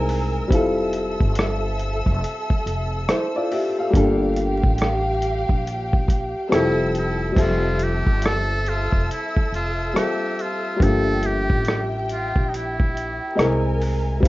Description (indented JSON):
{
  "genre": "lo-fi hip hop",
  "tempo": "70 BPM",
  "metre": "4/4",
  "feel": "swing 64% on 16ths",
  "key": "F major",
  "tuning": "A4 = 435 Hz",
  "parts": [
    { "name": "trumpet with metal mute", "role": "melody", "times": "0.0, 6.5-13.8 s", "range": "Eb4 to A4", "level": "-28 LUFS", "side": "right 1 dB", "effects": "none" },
    { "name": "clear upright piano", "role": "accompaniment", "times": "0.0-14.3 s", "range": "F3 to F5", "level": "-24 LUFS", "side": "left 2 dB", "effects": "cassette tape" },
    { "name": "warm studio string section", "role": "sustained chords", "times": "0.0-14.3 s", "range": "G4 to E6", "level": "-28 LUFS", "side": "equal", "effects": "none" },
    { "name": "upright bass", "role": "bass", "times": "0.0-14.3 s", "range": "F1 to C2", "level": "-25 LUFS", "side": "equal", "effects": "none" },
    { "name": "lo-fi sampler-style drum kit", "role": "drums", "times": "0.1-14.3 s", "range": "crash cymbal, hi-hat, kick drum, rim click", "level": "-21 LUFS", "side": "equal", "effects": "none" }
  ],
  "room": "moderate small room reverb, RT60 0.6 s",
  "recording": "rough home demo mix, vinyl crackle, nothing above 7.7 kHz",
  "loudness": "-19 LUFS",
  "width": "side -18 dB against mid",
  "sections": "0.0-7.4 A section; 7.4-14.3 B section",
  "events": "none",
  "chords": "0.0 C7alt; 0.5 Fmaj7; 3.9 Gm7; 6.5 Fmaj7; 10.8 Gm7; 13.4 C7alt"
}